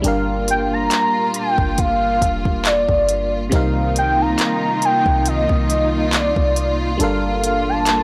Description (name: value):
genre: contemporary R&B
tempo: 69 BPM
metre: 4/4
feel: swing 54% on 16ths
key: G minor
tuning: A4 = 440 Hz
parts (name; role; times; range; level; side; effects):
- FM electric piano; accompaniment; 0.0-8.0 s; C3 to F5; -26 LUFS; equal; chorus
- rich studio string section; sustained chords; 0.0-8.0 s; Bb2 to F4; -27 LUFS; equal; sidechain pumping
- clean 808-style bass; bass; 0.0-8.0 s; F1 to C2; -26 LUFS; equal; none
- smooth R&B drum kit; drums; 0.0-8.0 s; handclaps, hi-hat, kick drum; -23 LUFS; equal; none
- warm velvety synth lead; melody; 0.5-8.0 s; D5 to Bb5; -21 LUFS; equal; chorus
room: little or no reverb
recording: dry, gritty hardware recording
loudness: -18 LUFS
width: mono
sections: 0.0-8.0 A section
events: none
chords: 0.0 Gm7; 3.5 Cm7; 7.0 Gm9